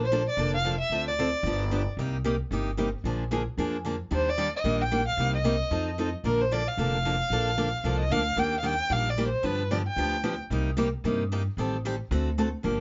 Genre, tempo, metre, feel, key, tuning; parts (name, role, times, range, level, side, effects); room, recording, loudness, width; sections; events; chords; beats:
acoustic string swing (jazz manouche); 225 BPM; 4/4; swing 56% on 8ths; Bb major, Eb major from 8.4 s; A4 = 441 Hz
warm violin; melody; 0.0-1.8, 4.1-10.4 s; Bb4 to G5; -30 LUFS; equal
picked steel-string acoustic guitar; accompaniment; 0.0-12.8 s; C3 to A4; -32 LUFS; equal
upright bass; bass; 0.0-12.8 s; F1 to G2; -32 LUFS; equal
light reverb; nothing above 7.6 kHz; -28 LUFS; mono
0.0-8.4 A section; 8.4-12.8 B section
0.0 Bbmaj7; 0.9 Dm7; 1.4 G7; 2.0 Cm7; 3.0 Bb7; 4.1 Ebmaj7; 5.2 Cm7; 5.7 F7; 6.2 Bbmaj7; 8.4 Ebmaj7; 9.4 G7; 10.5 Cm7; 11.6 Am7b5; 12.1 D7
0.10 0.37 0.64 | 0.91 1.17 1.44 1.71 | 1.97 2.24 2.51 2.77 | 3.04 3.31 3.57 3.84 | 4.11 4.37 4.64 4.91 | 5.17 5.44 5.71 5.97 | 6.24 6.51 6.77 7.04 | 7.31 7.57 7.84 8.11 | 8.37 8.64 8.90 9.17 | 9.44 9.70 9.97 10.24 | 10.50 10.77 11.04 11.30 | 11.57 11.84 12.10 12.37 | 12.63